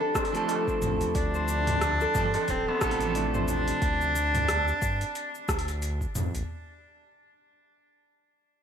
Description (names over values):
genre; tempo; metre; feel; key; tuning
organic downtempo; 90 BPM; 4/4; swing 57% on 16ths; D dorian; A4 = 440 Hz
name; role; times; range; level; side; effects
rich cello; melody; 0.0-5.8 s; A3 to D4; -30 LUFS; equal; digital delay
granular cloud pad; sustained chords; 0.0-3.8 s; D4 to B5; -41 LUFS; left 1 dB; none
concert harp; arpeggios; 0.0-6.0 s; C4 to C5; -31 LUFS; left 1 dB; digital delay
deep house drum kit; drums; 0.2-6.5 s; hi-hat, rim click, shaker, toms; -33 LUFS; equal; overdrive
electronic kick drum; drums; 0.2-6.1 s; none; -32 LUFS; equal; overdrive
darbuka; percussion; 0.2-3.8 s; none; -39 LUFS; right 6 dB; none
electric guitar at the edge of break-up; accompaniment; 0.3-4.2 s; C3 to A4; -33 LUFS; right 5 dB; sidechain pumping, digital delay
round analog bass; bass; 0.8-6.4 s; D1 to G2; -31 LUFS; equal; sidechain pumping
room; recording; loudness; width
light reverb; none; -25 LUFS; side -8 dB against mid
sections
0.0-6.5 A section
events
none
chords
0.0 Dm7